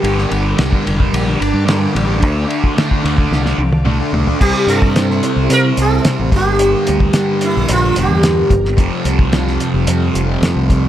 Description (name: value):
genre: psychedelic rock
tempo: 110 BPM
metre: 4/4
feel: straight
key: unclear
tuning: A4 = 442 Hz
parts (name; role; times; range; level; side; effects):
- ensemble organ-string; sustained chords; 0.0-10.9 s; G3 to D6; -25 LUFS; right 2 dB; ensemble chorus
- thick fuzz guitar; riff; 0.0-10.9 s; F2 to D4; -18 LUFS; equal; distortion, phaser
- overdriven fingered electric bass; bass; 0.0-10.9 s; E1 to C3; -17 LUFS; equal; none
- cloth-damped thuddy drum kit; drums; 0.0-10.8 s; crash cymbal, hi-hat, kick drum, ride cymbal, snare drum, toms; -17 LUFS; equal; none
- sitar; melody; 4.4-8.5 s; E4 to Bb4; -18 LUFS; right 1 dB; slapback echo
room: light reverb, small room ambience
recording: none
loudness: -12 LUFS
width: side -11 dB against mid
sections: 0.0-4.4 A section; 4.4-10.9 B section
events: drum fill 3.3-4.4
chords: 0.0 Gm; 2.2 Dm; 4.4 C; 6.3 Gm; 8.8 Fadd9